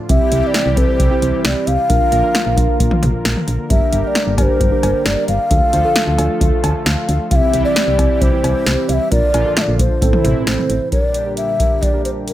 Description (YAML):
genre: synth-pop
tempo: 133 BPM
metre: 4/4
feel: straight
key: unclear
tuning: A4 = 440 Hz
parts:
  - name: brassy analog pad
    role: sustained chords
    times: 0.0-12.3 s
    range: A2 to Bb4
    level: -24 LUFS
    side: left 1 dB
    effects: chorus
  - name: mellow hollow bass bansuri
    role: melody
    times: 0.1-12.3 s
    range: Bb4 to F5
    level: -19 LUFS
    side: left 2 dB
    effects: tape echo
  - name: muted felt-like synth keys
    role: accompaniment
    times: 0.1-12.3 s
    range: C4 to A5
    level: -22 LUFS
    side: right 5 dB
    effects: chorus
  - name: solid FM bass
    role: bass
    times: 0.1-10.8 s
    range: G1 to D2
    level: -18 LUFS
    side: equal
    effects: none
  - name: electro analog drum machine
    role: drums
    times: 0.1-12.3 s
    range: cowbell, hi-hat, kick drum, snare drum, toms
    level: -17 LUFS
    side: equal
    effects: none
room: light reverb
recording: none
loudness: -13 LUFS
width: side -13 dB against mid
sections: 0.0-10.9 A section; 10.9-12.3 B section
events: synth keys fill 6.4-7.3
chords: 0.1 C; 1.9 Bb; 3.7 Gm; 5.5 Dm; 7.3 C; 9.1 Bb; 10.0 Am; 10.9 Gm